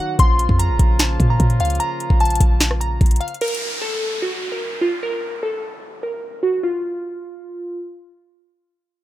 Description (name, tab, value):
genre	hip hop, trap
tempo	149 BPM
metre	4/4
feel	half-time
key	Bb harmonic minor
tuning	A4 = 440 Hz
part	glassy digital keys	melody	0.0-7.8 s	F4 to C6	-23 LUFS	equal	chorus, low-pass filter
part	mellow brass ensemble	sustained chords	0.0-3.4 s	Db3 to Gb4	-28 LUFS	equal	none
part	warm 808-style bass	bass	0.2-3.2 s	A1 to Bb2	-17 LUFS	equal	none
part	trap drum kit	drums	0.2-3.6 s	finger snaps, hi-hat, kick drum, rim click, snare drum	-18 LUFS	equal	none
part	downlifter	sound effects	3.4-6.6 s	none	-29 LUFS	equal	none
room	little or no reverb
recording	rough home demo mix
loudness	-17 LUFS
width	side -14 dB against mid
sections	0.0-3.4 A section; 3.4-6.6 B section; 6.6-9.0 C section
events	filter sweep on synth keys 3.4-6.6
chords	0.2 Bbm; 3.4 N.C.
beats	| 0.19 0.59 0.99 1.40 | 1.80 2.20 2.61 3.01 | 3.41 3.81 4.22 4.62 | 5.02 5.42 5.83 6.23 | 6.63 7.04 7.44